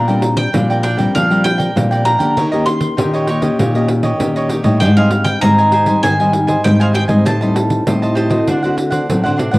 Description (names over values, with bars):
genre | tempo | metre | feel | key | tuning
samba and choro | 98 BPM | 4/4 | straight | unclear | A4 = 440 Hz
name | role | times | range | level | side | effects
bowl-back mandolin | melody | 0.0-9.1 s | F5 to C6 | -18 LUFS | equal | cassette tape
cavaquinho | accompaniment | 0.0-9.6 s | D4 to A5 | -21 LUFS | right 2 dB | cassette tape
nylon-string guitar | accompaniment | 0.0-9.6 s | Ab2 to B4 | -18 LUFS | left 2 dB | cassette tape
nylon-string guitar | bass | 0.0-9.6 s | Ab2 to F#3 | -16 LUFS | equal | none
pandeiro | percussion | 0.1-9.6 s | none | -21 LUFS | right 2 dB | none
room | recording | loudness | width
light reverb, studio reverb | home recording on cassette | -12 LUFS | side -21 dB against mid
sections
0.0-9.6 A section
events
none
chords
0.0 Bb69; 2.4 Eb7; 4.8 Abmaj7; 7.3 Am7b5; 8.5 D7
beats
0.54 1.15 1.76 | 2.37 2.98 3.59 4.20 | 4.81 5.42 6.04 6.64 | 7.26 7.87 8.48 9.09